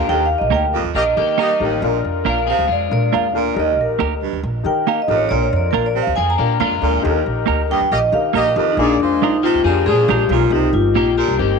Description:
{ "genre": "soul", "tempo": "138 BPM", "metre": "4/4", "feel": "straight", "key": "Bb mixolydian", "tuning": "A4 = 436 Hz", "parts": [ { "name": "vibraphone with medium mallets", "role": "melody", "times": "0.0-11.6 s", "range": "D4 to Bb5", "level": "-18 LUFS", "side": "equal", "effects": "none" }, { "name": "dark upright piano", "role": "accompaniment", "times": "0.0-11.6 s", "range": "Bb3 to Bb4", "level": "-23 LUFS", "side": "left 10 dB", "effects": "none" }, { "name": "electric guitar at the edge of break-up", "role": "riff", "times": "0.0-3.3, 6.2-11.6 s", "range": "G3 to Bb4", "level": "-27 LUFS", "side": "left 12 dB", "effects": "analog chorus" }, { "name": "warm baritone saxophone", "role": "riff", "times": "0.0-11.4 s", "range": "Eb2 to C3", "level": "-26 LUFS", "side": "right 13 dB", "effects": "none" }, { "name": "upright bass", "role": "bass", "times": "0.0-11.6 s", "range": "G1 to Eb3", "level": "-22 LUFS", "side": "right 1 dB", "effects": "none" }, { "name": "semi-hollow electric guitar", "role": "stabs", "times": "0.5-11.1 s", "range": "Ab3 to Bb4", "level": "-22 LUFS", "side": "right 13 dB", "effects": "none" }, { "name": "warm horn section", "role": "second line", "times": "0.7-1.7, 7.7-10.3 s", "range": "F3 to Eb5", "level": "-24 LUFS", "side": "equal", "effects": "none" } ], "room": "light reverb, small room ambience", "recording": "1960s-style stereo with parts hard left and right", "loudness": "-15 LUFS", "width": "side -5 dB against mid", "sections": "0.0-8.8 A section; 8.8-11.6 B section", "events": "vibraphone solo 0.0-8.8; band accent 0.1-1.8, 7.0-8.8", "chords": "0.1 Eb; 1.8 Bb; 3.6 Eb; 5.3 Bb; 7.0 Eb; 8.8 Bb7; 10.5 Cm7" }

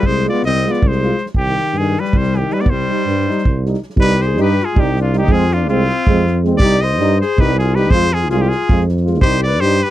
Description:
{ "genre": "balkan folk, Balkan brass band", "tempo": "321 BPM (eighths)", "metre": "7/8", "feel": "straight", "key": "C harmonic minor", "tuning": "A4 = 440 Hz", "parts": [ { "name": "cornet with straight mute", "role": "melody", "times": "0.0-9.9 s", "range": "F4 to Eb5", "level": "-19 LUFS", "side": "right 1 dB", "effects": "none" }, { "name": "clear alto saxophone", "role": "second line", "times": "0.0-9.9 s", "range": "Eb3 to C5", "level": "-22 LUFS", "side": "left 8 dB", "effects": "none" }, { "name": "clear trombone", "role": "accompaniment", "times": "0.0-9.8 s", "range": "C4 to F4", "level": "-23 LUFS", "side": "left 5 dB", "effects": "none" }, { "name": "mellow euphonium", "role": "accompaniment", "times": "0.0-9.8 s", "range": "G3 to Ab3", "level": "-21 LUFS", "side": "right 7 dB", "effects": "none" }, { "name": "mellow tuba", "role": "bass", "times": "0.0-9.8 s", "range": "C2 to G2", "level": "-17 LUFS", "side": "equal", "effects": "none" }, { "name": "unplugged drum kit", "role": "percussion", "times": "0.0-9.9 s", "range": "kick drum, snare drum", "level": "-17 LUFS", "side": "right 1 dB", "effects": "none" } ], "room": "little or no reverb", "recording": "dry, close 1970s-style studio recording", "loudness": "-13 LUFS", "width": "side -14 dB against mid", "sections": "0.0-4.0 A section; 4.0-9.9 B section", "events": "none", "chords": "0.0 Fm/C; 1.4 Cm; 5.3 Fm; 6.6 Cm" }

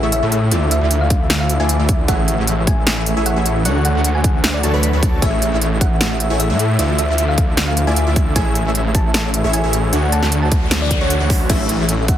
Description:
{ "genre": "future bass", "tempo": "153 BPM", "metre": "4/4", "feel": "half-time", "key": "A major", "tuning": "A4 = 440 Hz", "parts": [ { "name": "ethereal airy pad", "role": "sustained chords", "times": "0.0-12.2 s", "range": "C#3 to E5", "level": "-29 LUFS", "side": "right 1 dB", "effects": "none" }, { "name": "airy dreamy lead", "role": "arpeggios", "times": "0.0-12.2 s", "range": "E5 to B5", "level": "-28 LUFS", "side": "left 1 dB", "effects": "chorus, sidechain pumping, ping-pong delay" }, { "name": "supersaw stab", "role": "riff", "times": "0.0-12.2 s", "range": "A3 to B5", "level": "-23 LUFS", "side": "equal", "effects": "cassette tape, sidechain pumping" }, { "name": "wide detuned saw bass", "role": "bass", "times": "0.0-12.2 s", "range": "A1 to A2", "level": "-18 LUFS", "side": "equal", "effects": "chorus, sidechain pumping" }, { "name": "impact and noise sweep", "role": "sound effects", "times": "0.0-0.5, 10.5-11.5 s", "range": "none", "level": "-30 LUFS", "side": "left 2 dB", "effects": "none" }, { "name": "thumb-piano-like synth pluck", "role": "melody", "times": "0.1-12.2 s", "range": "B4 to A5", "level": "-25 LUFS", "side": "equal", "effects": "chorus, vintage 12-bit sampler grit, sidechain pumping, ping-pong delay" }, { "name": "big-room dance drum kit", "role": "drums", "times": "0.1-12.2 s", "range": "crash cymbal, hi-hat, snare drum", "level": "-20 LUFS", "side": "equal", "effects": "none" }, { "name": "electronic kick drum", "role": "drums", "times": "1.1-12.2 s", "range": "none", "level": "-17 LUFS", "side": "equal", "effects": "overdrive" } ], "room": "digital ambience", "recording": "heavily compressed radio sound, faint mains hum", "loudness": "-14 LUFS", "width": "side -11 dB against mid", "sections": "0.0-12.2 A section", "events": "impact 0.0-0.5; noise sweep 10.5-11.5", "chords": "0.0 Amaj7; 0.5 Dmadd9; 2.1 Amaj7; 3.7 Dmaj7; 5.2 Amaj7; 6.8 Dmadd9; 8.4 Amaj7; 9.9 Dmaj7; 11.5 Amaj7" }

